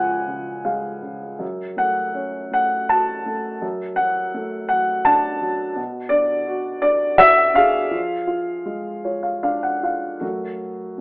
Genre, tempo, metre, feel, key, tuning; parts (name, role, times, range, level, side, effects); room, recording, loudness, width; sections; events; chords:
classical, lyrical solo piano; 82 BPM; 3/4; uneven beats, rubato; F# minor; A4 = 441 Hz
dark upright piano; solo; 0.0-11.0 s; C#2 to A5; -18 LUFS; equal
light reverb; telephone sound; -18 LUFS; side -30 dB against mid
0.0-10.2 A section
upright piano fill 8.7-10.2
0.0 C#; 1.4 F#m; 3.6 D/F#; 5.8 Bm; 8.0 Fm6; 10.2 F#m